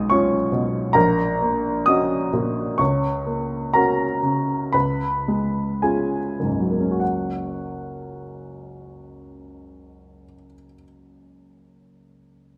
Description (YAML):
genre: classical, romantic character piece for solo piano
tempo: 49-74 BPM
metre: 4/4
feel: rubato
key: F# major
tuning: A4 = 438 Hz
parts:
  - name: warm baby grand piano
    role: solo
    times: 0.0-12.6 s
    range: F#1 to D#6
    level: -22 LUFS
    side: equal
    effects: none
room: moderate recital hall reverb, RT60 1.7 s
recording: close, detailed microphones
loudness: -22 LUFS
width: mono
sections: 0.0-7.0 A section; 7.0-11.6 B section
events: slowing down 0.0-7.0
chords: 0.0 C#7/B; 0.9 F#/A#; 2.8 F#/C#; 4.7 C#7; 7.0 F#